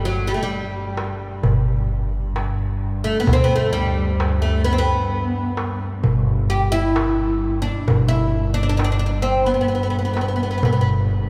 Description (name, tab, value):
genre	Arabic maqam ensemble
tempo	130 BPM (eighths)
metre	10/8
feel	straight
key	G maqam ajam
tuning	A4 = 438 Hz
part	oud	melody	0.0-10.9 s	F#3 to G4	-24 LUFS	equal	none
part	upright bass	bass	0.0-11.3 s	G1 to D2	-25 LUFS	equal	none
part	muted cello	drone	0.0-11.3 s	G2	-30 LUFS	equal	none
part	darbuka	percussion	0.1-10.8 s	none	-26 LUFS	equal	none
room	wet church reverb, RT60 3.9 s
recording	recorded in a church or concert hall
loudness	-20 LUFS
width	mono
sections	0.0-11.3 A section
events	none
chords	none